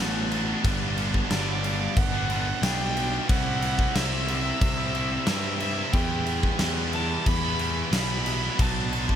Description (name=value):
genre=post-rock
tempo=91 BPM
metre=4/4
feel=straight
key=E minor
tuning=A4 = 441 Hz
part: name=biting overdriven guitar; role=riff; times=0.0-9.2 s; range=G2 to E4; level=-32 LUFS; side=left 8 dB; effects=none
part: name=distorted electric guitar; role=riff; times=0.0-9.2 s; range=G2 to E4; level=-31 LUFS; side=right 10 dB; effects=overdrive
part: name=fuzz picked electric bass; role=bass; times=0.0-9.2 s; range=G1 to G2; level=-29 LUFS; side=left 1 dB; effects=overdrive
part: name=big rock drum kit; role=drums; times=0.3-9.2 s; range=crash cymbal, kick drum, snare drum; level=-27 LUFS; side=equal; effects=none
part: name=warm violin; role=melody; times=1.3-9.2 s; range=D5 to B5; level=-32 LUFS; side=equal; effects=tape echo
room=little or no reverb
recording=none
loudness=-23 LUFS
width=side -9 dB against mid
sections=0.0-9.2 A section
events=none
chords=0.0 Bm7; 0.6 Gmaj7; 3.3 C; 5.9 Em; 8.6 Bm7